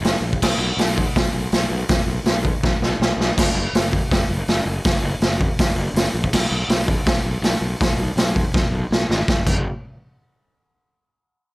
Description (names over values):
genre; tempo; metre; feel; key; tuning
garage rock duo or trio; 162 BPM; 4/4; straight; unclear; A4 = 441 Hz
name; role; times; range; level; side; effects
fuzz fingered electric bass; bass; 0.0-9.6 s; F#1 to B1; -24 LUFS; equal; overdrive
raw garage drum kit; drums; 0.0-9.6 s; crash cymbal, hi-hat, kick drum, snare drum; -18 LUFS; equal; none
room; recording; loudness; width
light reverb; none; -17 LUFS; side -22 dB against mid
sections
0.0-3.4 A section; 3.4-9.3 A section; 9.3-10.8 B section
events
drum fill 2.6-3.4, 8.5-9.3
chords
none